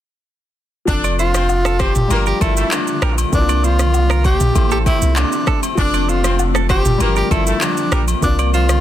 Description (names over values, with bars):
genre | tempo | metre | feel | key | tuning
afrobeats | 98 BPM | 4/4 | straight | unclear | A4 = 442 Hz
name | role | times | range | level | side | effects
breathy tenor saxophone | melody | 0.9-8.8 s | D4 to G4 | -21 LUFS | equal | tape echo
warm horn section | second line | 0.9-8.0 s | G3 to D5 | -27 LUFS | left 1 dB | tape echo
warm grand piano | accompaniment | 0.9-8.8 s | C3 to D5 | -24 LUFS | left 5 dB | none
granular cloud pad | sustained chords | 1.6-8.8 s | D3 to G4 | -26 LUFS | right 1 dB | built-in reverb
punchy sub bass | bass | 0.9-8.8 s | F1 to C2 | -17 LUFS | equal | none
afro-pop drum kit | drums | 0.9-8.8 s | handclaps, kick drum, rim click, shaker, toms | -20 LUFS | equal | none
direct-recorded clean electric guitar | riff | 1.0-8.7 s | G4 to D5 | -26 LUFS | right 10 dB | tape echo
agogo bells and woodblock | percussion | 1.0-8.8 s | none | -26 LUFS | left 12 dB | none
room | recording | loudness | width
small room ambience | dense, heavily limited modern master | -14 LUFS | side -12 dB against mid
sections
0.9-8.8 A section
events
none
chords
0.9 F6; 2.1 Gm7; 3.3 C9sus4; 4.6 Am7; 5.8 F6; 7.0 Gm7; 8.2 C9sus4